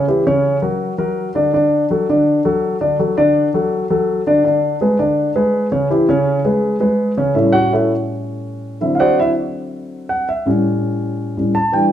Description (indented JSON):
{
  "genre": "jazz",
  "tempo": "165 BPM",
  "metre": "4/4",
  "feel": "straight",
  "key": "A mixolydian",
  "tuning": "A4 = 444 Hz",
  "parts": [
    { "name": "dark grand piano", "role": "solo", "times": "0.0-11.9 s", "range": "A2 to A5", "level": "-14 LUFS", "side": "equal", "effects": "none" }
  ],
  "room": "wet large studio reverb, RT60 1.2 s",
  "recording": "band playing live in one room",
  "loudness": "-14 LUFS",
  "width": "side -10 dB against mid",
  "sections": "0.0-7.4 A section; 7.4-11.9 B section",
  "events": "grand piano solo 7.4-11.9",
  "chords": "0.0 C#dim; 0.8 F#aug; 1.5 D; 4.4 Bm69; 5.9 C#m7; 6.6 G#madd11; 7.4 A7; 8.8 D7; 10.3 A7"
}